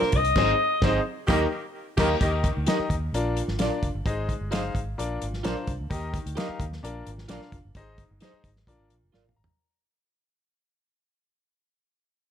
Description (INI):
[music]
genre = uptempo 1960s-style soul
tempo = 130 BPM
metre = 4/4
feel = straight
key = Eb major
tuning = A4 = 440 Hz
[part]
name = breathy alto saxophone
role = melody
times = 0.0-1.1 s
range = Bb4 to Eb5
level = -24 LUFS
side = left 2 dB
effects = plate reverb
[part]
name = clear baby grand piano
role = accompaniment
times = 0.0-9.8 s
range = Ab2 to Bb5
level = -30 LUFS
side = left 3 dB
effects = plate reverb
[part]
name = vintage muted fingered electric bass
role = bass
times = 0.0-9.5 s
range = F1 to Eb2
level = -30 LUFS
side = equal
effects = none
[part]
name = warm soul drum kit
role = drums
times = 0.0-9.5 s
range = crash cymbal, hi-hat, kick drum, snare drum, toms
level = -28 LUFS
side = equal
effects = none
[part]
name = electric guitar through a small old amp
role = stabs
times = 0.4-9.2 s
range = Eb4 to Eb5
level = -32 LUFS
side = right 8 dB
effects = wide subtle chorus, plate reverb
[part]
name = bright saxophone section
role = second line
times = 1.3-2.1 s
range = Eb3 to G4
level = -32 LUFS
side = equal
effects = plate reverb, tape echo
[sound]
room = light reverb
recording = none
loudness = -24 LUFS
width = side -8 dB against mid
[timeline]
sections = 0.0-2.2 A section; 2.2-9.6 B section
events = band accent 0.4-2.2; fade-out 2.2-9.6; drum fill 9.1-9.6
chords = 0.4 Ab; 1.3 Eb; 3.1 Bb; 4.1 Ab; 5.0 Bb; 5.9 Eb; 6.8 Bb; 7.7 Ab; 8.7 Bb